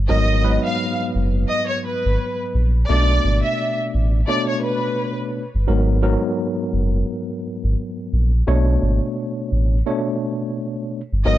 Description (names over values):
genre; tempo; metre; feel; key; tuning
hip hop; 86 BPM; 4/4; swing 60% on 16ths; unclear; A4 = 438 Hz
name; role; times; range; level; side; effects
sub bass with octave; bass; 0.0-11.4 s; F#1 to B1; -17 LUFS; equal; none
warm studio violin section; melody; 0.1-5.2, 11.3-11.4 s; B4 to E#5; -23 LUFS; equal; high-pass filter, low-pass filter, analog delay
tine electric piano; accompaniment; 0.1-11.4 s; G#2 to D5; -23 LUFS; equal; overdrive, fast stereo tremolo, high-pass filter, low-pass filter
room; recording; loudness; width
small room ambience; dry, gritty hardware recording; -18 LUFS; side -13 dB against mid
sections
0.1-11.4 A section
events
none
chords
0.1 G#m9; 2.9 Bm9; 5.7 G#m9; 8.5 Bm9